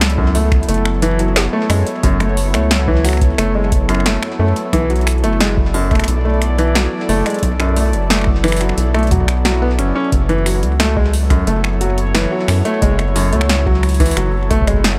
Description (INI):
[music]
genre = IDM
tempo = 89 BPM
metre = 4/4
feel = straight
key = F# minor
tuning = A4 = 439 Hz
[part]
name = warbly tape-like pad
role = sustained chords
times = 0.0-15.0 s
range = F#3 to D5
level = -25 LUFS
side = equal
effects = chorus, built-in reverb, vintage 12-bit sampler grit
[part]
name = rubbery square bass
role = bass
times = 0.0-15.0 s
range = F#1 to F#2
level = -19 LUFS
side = equal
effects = none
[part]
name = electro analog drum machine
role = drums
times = 0.0-15.0 s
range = finger snaps, hi-hat, snare drum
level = -23 LUFS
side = equal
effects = delay
[part]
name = felt-muted upright piano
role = arpeggios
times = 0.2-14.8 s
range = F#2 to C#4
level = -21 LUFS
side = equal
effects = delay
[part]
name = electronic kick drum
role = drums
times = 0.2-14.8 s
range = none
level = -19 LUFS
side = equal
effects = none
[sound]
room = little or no reverb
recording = none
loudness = -15 LUFS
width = mono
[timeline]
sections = 0.0-15.0 A section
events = none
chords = 0.0 F#m7; 4.7 Bm; 10.1 F#m7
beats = 0.01 0.69 1.36 | 2.03 2.71 3.38 4.06 | 4.73 5.41 6.08 6.75 | 7.43 8.10 8.78 9.45 | 10.12 10.80 11.47 12.15 | 12.82 13.49 14.17 14.84